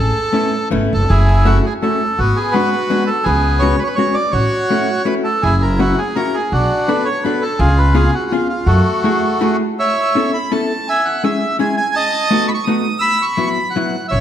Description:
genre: musette waltz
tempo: 166 BPM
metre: 3/4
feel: rubato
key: F# minor, A major from 9.8 s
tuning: A4 = 440 Hz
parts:
  - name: bandoneon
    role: melody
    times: 0.0-14.2 s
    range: A3 to E6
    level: -17 LUFS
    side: right 1 dB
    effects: none
  - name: upright bass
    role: bass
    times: 0.0-8.8, 14.1-14.2 s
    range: F#1 to F#2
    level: -15 LUFS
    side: equal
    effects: none
  - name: hollow-body jazz guitar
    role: accompaniment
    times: 0.3-14.0 s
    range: F#3 to A4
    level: -19 LUFS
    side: left 2 dB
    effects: none
room: moderate recital hall reverb, RT60 1.7 s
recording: none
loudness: -13 LUFS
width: side -10 dB against mid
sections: 0.0-1.1 A section; 1.1-9.8 B section; 9.8-14.2 A section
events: none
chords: 0.0 Aadd9; 1.1 F#m7; 2.2 G#m7b5; 3.3 C#7sus4; 4.3 A6; 5.4 F#7; 6.5 Bm7; 7.6 C#7; 8.7 F#m9; 9.8 Aadd9; 10.9 C#m; 12.0 B7; 13.0 Esus2

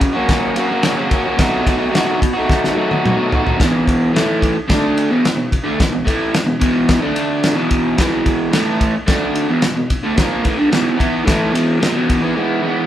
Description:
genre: garage rock duo or trio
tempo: 109 BPM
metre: 4/4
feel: straight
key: unclear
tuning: A4 = 440 Hz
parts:
  - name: crunchy overdriven guitar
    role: riff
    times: 0.0-12.9 s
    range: E2 to F#4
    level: -16 LUFS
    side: equal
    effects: none
  - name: cloth-damped thuddy drum kit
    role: drums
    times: 0.0-12.2 s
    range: kick drum, ride cymbal, snare drum, toms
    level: -18 LUFS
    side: equal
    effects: none
room: moderate large studio reverb, RT60 0.9 s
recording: band playing live in one room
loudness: -14 LUFS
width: side -11 dB against mid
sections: 0.0-3.6 A section; 3.6-12.4 B section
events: drum fill 2.5-3.6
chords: 0.0 F#; 1.4 B7; 3.6 E5; 7.0 D5; 7.6 E5

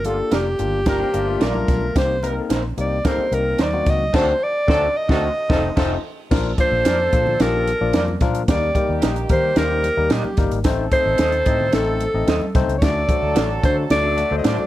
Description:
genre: uptempo 1960s-style soul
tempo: 110 BPM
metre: 4/4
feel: straight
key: G minor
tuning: A4 = 440 Hz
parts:
  - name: breathy alto saxophone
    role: melody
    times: 0.0-14.7 s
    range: G4 to Eb5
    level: -21 LUFS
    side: equal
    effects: plate reverb
  - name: clear horn section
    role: second line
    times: 0.0-14.7 s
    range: D3 to Bb4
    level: -30 LUFS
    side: right 3 dB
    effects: plate reverb
  - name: vintage muted fingered electric bass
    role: bass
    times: 0.0-14.6 s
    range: F1 to Eb3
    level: -24 LUFS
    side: equal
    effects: none
  - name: compact cocktail drum kit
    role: drums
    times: 0.0-14.6 s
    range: crash cymbal, hi-hat, kick drum, snare drum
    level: -21 LUFS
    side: right 1 dB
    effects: none
  - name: congas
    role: percussion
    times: 0.0-14.7 s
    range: none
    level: -32 LUFS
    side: right 2 dB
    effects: none
  - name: barky tine electric piano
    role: accompaniment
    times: 0.1-14.6 s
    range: F3 to Bb5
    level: -25 LUFS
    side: left 6 dB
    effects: overdrive, plate reverb
  - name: electric guitar through a small old amp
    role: stabs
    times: 0.3-14.6 s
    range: D4 to Eb5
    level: -28 LUFS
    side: right 4 dB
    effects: tremolo, plate reverb
  - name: electric guitar through a small old amp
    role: riff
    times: 1.0-1.9, 14.0-14.7 s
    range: F3 to F#4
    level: -30 LUFS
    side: left 8 dB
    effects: spring reverb
room: light reverb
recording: none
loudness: -17 LUFS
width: side -14 dB against mid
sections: 0.0-6.3 A section; 6.3-14.7 B section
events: band accent 4.1-6.3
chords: 0.0 Gm7; 2.0 Cm7; 4.1 D7; 5.2 F7; 6.3 Bb; 8.5 Eb; 10.7 Adim; 12.8 D

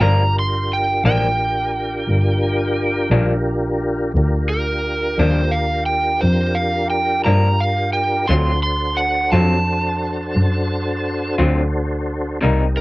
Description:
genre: slow blues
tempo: 58 BPM (dotted quarters)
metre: 12/8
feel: straight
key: G minor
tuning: A4 = 440 Hz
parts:
  - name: overdriven slide guitar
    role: second line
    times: 0.0-12.8 s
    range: Bb4 to C6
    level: -20 LUFS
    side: right 2 dB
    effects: none
  - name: electric guitar through a small old amp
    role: accompaniment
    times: 0.0-12.6 s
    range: G2 to E#4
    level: -20 LUFS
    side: left 2 dB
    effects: tremolo
  - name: tonewheel organ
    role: sustained chords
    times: 0.0-12.8 s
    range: C4 to C5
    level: -23 LUFS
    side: equal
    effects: slow rotary speaker, chorus vibrato
  - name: dark double bass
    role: bass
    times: 0.0-12.8 s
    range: G1 to G2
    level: -19 LUFS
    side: equal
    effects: none
room: light reverb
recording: worn, warbling old tape, cassette tape, warbly pitch drift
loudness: -16 LUFS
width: side -20 dB against mid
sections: 0.0-12.8 A section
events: electric slide guitar solo 0.0-12.8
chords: 0.0 Gm7; 8.3 D7#9

